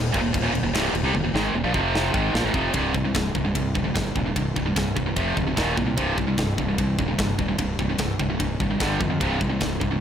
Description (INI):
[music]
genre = heavy metal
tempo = 149 BPM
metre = 4/4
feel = straight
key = C minor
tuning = A4 = 444 Hz
[part]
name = high-gain distorted guitar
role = riff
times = 0.0-10.0 s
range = C2 to Ab3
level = -23 LUFS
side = right 1 dB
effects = distortion
[part]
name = fuzz fingered electric bass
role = bass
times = 0.0-10.0 s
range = C1 to F2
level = -28 LUFS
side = equal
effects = overdrive
[part]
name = tight metal drum kit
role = drums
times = 0.1-9.9 s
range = crash cymbal, kick drum, ride cymbal, snare drum, toms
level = -27 LUFS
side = equal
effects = none
[sound]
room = small room ambience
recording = none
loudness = -21 LUFS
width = side -9 dB against mid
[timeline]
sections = 0.0-2.7 A section; 2.7-10.0 B section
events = drum fill 1.1-2.7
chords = 0.0 Eb5; 1.7 F5; 2.1 Eb5; 2.7 Cm; 5.2 F5; 5.6 Eb5; 6.0 C5; 8.8 G5; 9.2 C5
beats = 0.34 0.74 | 1.14 1.54 1.94 2.34 | 2.75 3.15 3.55 3.95 | 4.36 4.76 5.16 5.57 | 5.97 6.38 6.78 7.18 | 7.59 7.99 8.39 8.80 | 9.20 9.61